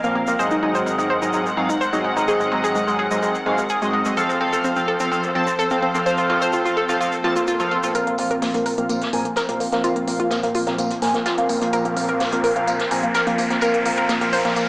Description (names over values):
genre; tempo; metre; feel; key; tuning
progressive house; 127 BPM; 4/4; straight; unclear; A4 = 440 Hz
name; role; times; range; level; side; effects
rich symphonic string section; sustained chords; 0.0-14.7 s; F2 to Gb5; -28 LUFS; equal; low-pass filter
analog pluck; arpeggios; 0.0-14.7 s; Ab3 to C5; -22 LUFS; equal; chorus, dub echo
chorused polysynth; stabs; 0.0-14.7 s; Ab2 to A5; -21 LUFS; equal; dub echo
electronic hi-hat; drums; 0.0-14.7 s; none; -36 LUFS; equal; high-pass filter on hats, low-pass filter on hats
tube shaker; percussion; 0.0-7.9 s; none; -38 LUFS; equal; none
vintage drum kit; drums; 0.2-14.7 s; hi-hat, snare drum, tambourine; -31 LUFS; equal; high-pass filter on hats, low-pass filter on hats, high-pass filter on snare, low-pass filter on snare, high-pass filter on perc, low-pass filter on perc, high-pass filter on room, low-pass filter on room
swell and riser; sound effects; 7.2-14.7 s; none; -29 LUFS; equal; none
round analog bass; bass; 8.0-14.7 s; none; barely audible; none; none
room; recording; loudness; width
moderate lush hall reverb, RT60 1.7 s, studio reverb; small speaker sound; -18 LUFS; side -24 dB against mid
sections
0.0-8.0 A section; 8.0-14.7 B section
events
swell 7.2-8.0; build-up 8.0-14.7; filter sweep on synth arpeggio sound 8.0-14.7; riser 10.8-14.7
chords
0.4 Ab7; 4.2 F; 8.0 Bbsus2